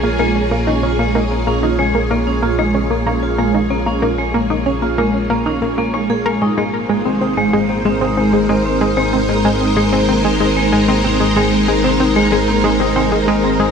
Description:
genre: ambient, sequencer-driven space music.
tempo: 94 BPM.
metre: 4/4.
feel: straight.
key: Bb minor.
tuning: A4 = 441 Hz.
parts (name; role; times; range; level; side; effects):
string machine, full ensemble; sustained chords; 0.0-13.7 s; Ab3 to Db5; -18 LUFS; left 1 dB; ensemble chorus.
vibraphone with medium hard mallets; arpeggios; 0.0-13.7 s; Ab3 to Ab4; -19 LUFS; right 1 dB; auto-pan, low-pass filter, analog delay.
analog pluck; riff; 0.0-13.7 s; Ab3 to Db5; -18 LUFS; equal; chorus, analog delay.
round analog bass; bass; 0.0-13.7 s; Ab1 to Bb1; -24 LUFS; equal; none.
room: moderate huge ambient reverb, RT60 7.8 s.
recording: none.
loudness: -13 LUFS.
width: side -6 dB against mid.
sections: 0.0-13.7 A section.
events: none.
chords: 0.0 Bbm7; 6.4 Abadd9.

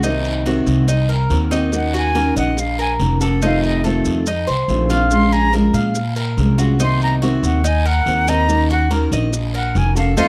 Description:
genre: latin, Cuban son and guajira.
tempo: 142 BPM.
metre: 4/4.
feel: straight.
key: unclear.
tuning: A4 = 440 Hz.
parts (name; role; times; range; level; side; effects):
nylon-string guitar; accompaniment; 0.0-10.3 s; C3 to Gb4; -22 LUFS; equal; none.
Cuban tres; arpeggios; 0.0-10.3 s; Eb4 to F5; -26 LUFS; equal; none.
upright bass; bass; 0.0-10.3 s; F1 to Bb2; -21 LUFS; equal; none.
guiro; percussion; 0.0-10.3 s; none; -34 LUFS; equal; none.
maracas; percussion; 0.0-10.3 s; none; -32 LUFS; equal; none.
jazz flute; melody; 1.8-10.3 s; Eb5 to C6; -23 LUFS; equal; none.
room: little or no reverb.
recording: dry, close 1970s-style studio recording.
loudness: -17 LUFS.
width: mono.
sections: 0.0-10.3 A section.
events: flute solo 0.0-10.3.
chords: 0.0 Cm7b5; 1.7 Ebm7; 3.4 F7; 5.1 Bbm7; 6.8 Cm7b5; 8.5 Ebm7.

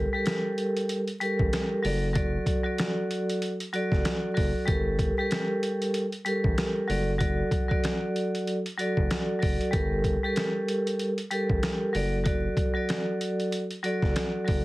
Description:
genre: hip hop, boom-bap hip-hop.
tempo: 95 BPM.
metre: 4/4.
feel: swing 60% on 16ths.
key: G harmonic minor.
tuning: A4 = 441 Hz.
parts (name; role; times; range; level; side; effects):
vibraphone with hard mallets; accompaniment; 0.0-14.6 s; F#3 to D5; -27 LUFS; equal; cassette tape, high-pass filter, low-pass filter.
round analog bass; bass; 0.0-14.6 s; F#1 to A1; -30 LUFS; equal; none.
boom bap sampler-style drum kit; drums; 0.3-14.6 s; hi-hat, kick drum, snare drum; -29 LUFS; equal; none.
room: moderate studio ambience, RT60 0.5 s.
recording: heavily compressed radio sound, vinyl crackle.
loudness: -25 LUFS.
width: side -19 dB against mid.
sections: 0.0-14.6 A section.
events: none.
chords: 0.0 Gmadd9; 1.8 D/F#; 4.7 Gmadd9; 6.9 D/F#; 9.7 Gmadd9; 11.9 D/F#.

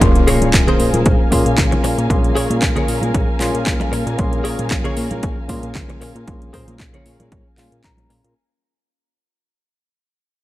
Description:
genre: nu-disco, nu disco.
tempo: 115 BPM.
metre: 4/4.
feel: swing 54% on 16ths.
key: Bb minor.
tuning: A4 = 440 Hz.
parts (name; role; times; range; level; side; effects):
tine electric piano; accompaniment; 0.0-8.3 s; Bb3 to C6; -22 LUFS; left 1 dB; overdrive, low-pass filter, analog delay.
dark chamber string section; sustained chords; 0.0-8.3 s; Bb4 to Ab5; -28 LUFS; equal; vintage 12-bit sampler grit, sidechain pumping.
fat analog bass; bass; 0.0-8.3 s; Bb1 to Bb2; -22 LUFS; equal; none.
electronic kick drum; drums; 0.0-8.0 s; none; -18 LUFS; equal; overdrive.
house drum kit; drums; 0.0-8.3 s; handclaps, hi-hat; -24 LUFS; equal; overdrive.
congas; percussion; 0.0-8.1 s; none; -27 LUFS; right 1 dB; none.
impact; sound effects; 0.0-2.1 s; none; -22 LUFS; equal; none.
direct-recorded clean electric guitar; riff; 0.3-8.3 s; Ab4 to Bb5; -24 LUFS; left 1 dB; ensemble chorus, low-pass filter, analog delay.
room: little or no reverb.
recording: dry, gritty hardware recording.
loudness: -14 LUFS.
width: side -16 dB against mid.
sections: 0.0-8.4 A section.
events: fade-out 0.0-8.4; impact 0.0-2.1; filter sweep on tine electric piano 0.0-8.4; clean electric guitar fill 7.3-8.4.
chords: 0.0 Bbm7.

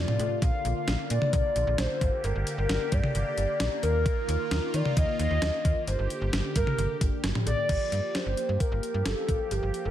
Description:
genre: synth-pop.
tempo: 132 BPM.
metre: 4/4.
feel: straight.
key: G minor.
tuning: A4 = 439 Hz.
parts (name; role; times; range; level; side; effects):
hollow clarinet-like synth lead; melody; 0.0-9.9 s; G4 to F5; -30 LUFS; left 1 dB; chorus, digital delay.
phased analog pad; sustained chords; 0.0-9.9 s; C3 to G4; -34 LUFS; left 1 dB; phaser, chorus.
slap-like FM bass; bass; 0.0-9.9 s; G1 to Eb3; -29 LUFS; equal; none.
clean 12-bit digital drum machine; drums; 0.1-9.8 s; cowbell, crash cymbal, hi-hat, kick drum, snare drum, toms; -29 LUFS; equal; overdrive.
room: light reverb, digital ambience.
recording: none.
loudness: -25 LUFS.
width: side -11 dB against mid.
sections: 0.0-7.7 A section; 7.7-9.9 B section.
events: none.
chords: 0.4 Bb; 2.0 Gm; 3.8 Ebsus2; 5.9 Gm; 7.7 Gm7.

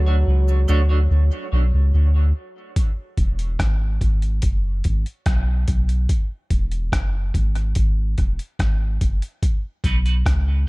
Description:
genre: dub reggae.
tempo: 72 BPM.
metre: 4/4.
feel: straight.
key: E major.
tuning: A4 = 439 Hz.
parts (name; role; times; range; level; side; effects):
warm trombone; melody; 0.0-1.1 s; F#3; -32 LUFS; right 1 dB; tape echo.
soft dub sub bass; bass; 0.0-10.7 s; E1 to D2; -18 LUFS; equal; none.
clean electric guitar; accompaniment; 0.1-1.0, 9.8-10.1 s; A3 to C#5; -30 LUFS; right 3 dB; lush chorus, high-pass filter, tape echo.
cabasa; percussion; 0.5-0.9 s; none; -47 LUFS; right 12 dB; tape echo.
boom bap sampler-style drum kit; drums; 2.8-10.5 s; hi-hat, kick drum, rim click; -20 LUFS; equal; none.
room: digital ambience.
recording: echo-heavy mix.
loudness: -18 LUFS.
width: side -24 dB against mid.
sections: 0.0-2.8 A section; 2.8-10.7 B section.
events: break 0.0-2.8, 2.8-9.4; drums muted 1.1-2.8.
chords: 0.0 Dmaj7; 2.8 E; 9.4 B7.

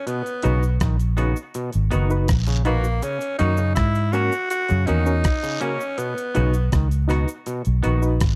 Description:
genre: roots reggae.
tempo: 81 BPM.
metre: 4/4.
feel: straight.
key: B major.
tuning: A4 = 440 Hz.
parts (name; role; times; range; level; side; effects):
raspy tenor saxophone; melody; 0.0-6.7 s; A#3 to F#4; -28 LUFS; equal; tape echo.
auto-wah clav; arpeggios; 0.1-8.0 s; B2 to D#3; -33 LUFS; equal; overdrive.
dusty soul sampler-style drum kit; drums; 0.1-8.4 s; hi-hat, kick drum, rim click; -26 LUFS; equal; none.
cabasa and guiro; percussion; 0.1-8.4 s; none; -40 LUFS; equal; none.
semi-hollow electric guitar; accompaniment; 0.4-8.0 s; A#3 to F#4; -35 LUFS; equal; subtle chorus, tape echo.
reed electric piano; stabs; 0.4-8.2 s; C#4 to B4; -28 LUFS; equal; medium tremolo.
vintage muted fingered electric bass; bass; 0.5-8.4 s; F#1 to G#2; -22 LUFS; equal; none.
room: digital ambience.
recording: dry, close 1970s-style studio recording.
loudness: -22 LUFS.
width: mono.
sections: 0.0-8.4 A section.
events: none.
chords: 0.1 B; 3.0 F#; 6.0 B.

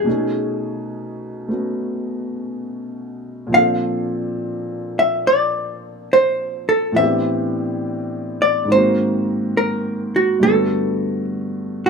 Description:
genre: jazz ballad.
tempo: 70 BPM.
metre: 4/4.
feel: swing 67% on 8ths.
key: unclear.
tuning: A4 = 442 Hz.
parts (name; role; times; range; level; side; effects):
hollow-body jazz guitar; melody; 0.0-11.9 s; Gb4 to F5; -17 LUFS; equal; plate reverb.
warm upright piano; accompaniment; 0.0-11.9 s; G2 to A4; -22 LUFS; equal; none.
room: moderate studio ambience, RT60 0.5 s.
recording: close, detailed microphones.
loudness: -17 LUFS.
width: side -5 dB against mid.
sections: 0.0-11.9 A section.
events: none.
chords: 0.1 B13; 3.5 Bbmaj9; 7.0 Am11; 8.7 Ab9; 10.4 Gmaj9.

